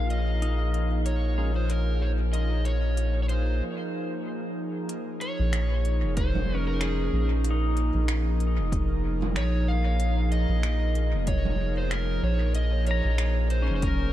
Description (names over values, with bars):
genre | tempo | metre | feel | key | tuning
ambient dub | 94 BPM | 4/4 | swing 57% on 16ths | Bb minor | A4 = 439 Hz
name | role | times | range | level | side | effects
overdriven slide guitar | melody | 0.0-14.1 s | Ab4 to F5 | -34 LUFS | equal | dub echo
airy breathy pad | sustained chords | 0.0-14.1 s | F3 to Bb4 | -32 LUFS | right 1 dB | chorus
round analog bass | bass | 0.0-14.1 s | F1 to Bb1 | -25 LUFS | equal | none
wind-like tuned noise texture | texture | 0.0-3.6 s | F4 to F5 | -42 LUFS | equal | built-in reverb
organic electronic drum kit | drums | 0.1-14.0 s | congas, finger snaps, hi-hat | -37 LUFS | right 2 dB | dub echo
pedal steel guitar | arpeggios | 0.4-1.9, 6.5-8.9, 12.9-14.1 s | Db4 to Bb5 | -36 LUFS | left 2 dB | dub echo
percussive tonewheel organ | stabs | 1.4-1.5 s | Ab3 to Bb4 | -44 LUFS | right 1 dB | none
electronic kick drum | drums | 6.2-14.0 s | none | -29 LUFS | equal | overdrive
room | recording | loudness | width
light reverb | none | -24 LUFS | side -13 dB against mid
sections
0.0-4.9 A section; 4.9-14.1 B section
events
break 3.6-4.9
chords
0.0 Bbm7